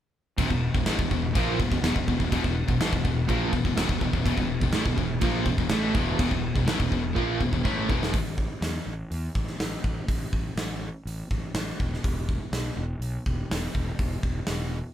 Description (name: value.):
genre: hard rock.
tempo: 123 BPM.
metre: 4/4.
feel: straight.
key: unclear.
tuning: A4 = 436 Hz.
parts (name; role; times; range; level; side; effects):
overdriven tonewheel organ; sustained chords; 0.4-8.1 s; E3 to G#4; -40 LUFS; equal; none.
crunchy overdriven guitar; riff; 0.4-8.1 s; E2 to A#3; -31 LUFS; equal; none.
heavy high-gain guitar; riff; 0.4-8.1 s; E2 to A#3; -30 LUFS; left 8 dB; distortion.
overdriven semi-hollow guitar; riff; 0.4-8.1 s; E2 to A#3; -31 LUFS; right 6 dB; tremolo.
fuzz fingered electric bass; bass; 0.4-14.8 s; E1 to E2; -30 LUFS; equal; overdrive.
gated 80s drum kit; drums; 0.4-14.6 s; crash cymbal, hi-hat, kick drum, snare drum; -28 LUFS; equal; none.
room: light reverb.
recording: band playing live in one room.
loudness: -24 LUFS.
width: side -11 dB against mid.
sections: 0.4-8.1 A section; 8.1-14.9 B section.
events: drum fill 7.2-8.1.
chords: 0.4 E; 8.1 A5; 11.8 N.C..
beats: | 0.37 0.85 1.34 1.82 | 2.31 2.79 3.28 3.76 | 4.25 4.74 5.22 5.71 | 6.19 6.68 7.17 7.65 | 8.14 8.63 9.12 9.60 | 10.09 10.58 11.07 11.56 | 12.04 12.53 13.02 13.51 | 13.99 14.48.